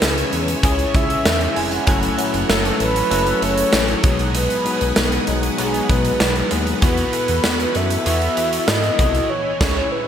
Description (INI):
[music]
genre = 1980s-style pop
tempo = 97 BPM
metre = 4/4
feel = straight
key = C# minor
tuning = A4 = 440 Hz
[part]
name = mellow horn-like synth lead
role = melody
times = 0.0-10.1 s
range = G#4 to E5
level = -23 LUFS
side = equal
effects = chorus, tremolo, digital delay
[part]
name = bell-like tine electric piano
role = accompaniment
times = 0.0-10.1 s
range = F#3 to B4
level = -23 LUFS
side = left 4 dB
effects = analog chorus
[part]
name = cranked stack guitar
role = accompaniment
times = 0.0-10.1 s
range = B2 to F#4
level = -28 LUFS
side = right 5 dB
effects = overdrive, analog chorus
[part]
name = string machine, violas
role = sustained chords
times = 0.0-10.1 s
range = E4 to E6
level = -28 LUFS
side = equal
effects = ensemble chorus
[part]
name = chorused synth bass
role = bass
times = 0.0-9.8 s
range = E#1 to G#2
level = -23 LUFS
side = equal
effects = none
[part]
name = big rock drum kit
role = drums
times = 0.0-9.8 s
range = crash cymbal, hi-hat, kick drum, snare drum, tambourine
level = -20 LUFS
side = right 1 dB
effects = gated reverb
[part]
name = shimmering bell with halo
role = second line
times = 1.6-2.6 s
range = F#5 to G#5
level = -28 LUFS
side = right 2 dB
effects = ensemble chorus, digital delay
[sound]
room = moderate lush hall reverb, RT60 2.1 s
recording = bright 1980s-style digital production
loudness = -16 LUFS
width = side -9 dB against mid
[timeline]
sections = 0.0-10.1 A section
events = band accent 9.3-10.1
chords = 0.0 C#m; 1.9 F#m7; 4.0 B6; 6.8 Esus2; 9.3 C#m